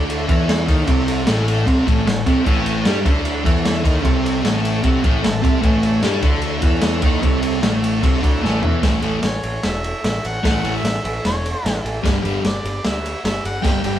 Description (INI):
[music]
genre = garage rock duo or trio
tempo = 150 BPM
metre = 4/4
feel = straight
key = A mixolydian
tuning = A4 = 440 Hz
[part]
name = overdriven combo organ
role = sustained chords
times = 0.0-14.0 s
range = E4 to A5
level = -29 LUFS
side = right 3 dB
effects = none
[part]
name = fuzz guitar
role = riff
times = 0.0-14.0 s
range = G2 to G4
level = -20 LUFS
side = equal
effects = distortion
[part]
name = growling picked electric bass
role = bass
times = 0.0-14.0 s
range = E1 to G2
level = -24 LUFS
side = equal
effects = overdrive, tube saturation
[part]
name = crunchy breakbeat drum kit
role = drums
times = 0.1-13.9 s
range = crash cymbal, kick drum, ride cymbal, snare drum, toms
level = -19 LUFS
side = equal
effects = none
[part]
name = clear harmonica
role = melody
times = 9.2-14.0 s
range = C#5 to G5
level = -27 LUFS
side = equal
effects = overdrive
[sound]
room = moderate stone room reverb, RT60 1.2 s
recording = band playing live in one room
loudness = -16 LUFS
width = side -11 dB against mid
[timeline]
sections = 0.0-8.8 A section; 8.8-14.0 B section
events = transistor combo organ fill 4.4-5.6; drum fill 8.4-8.8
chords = 0.0 A; 12.0 G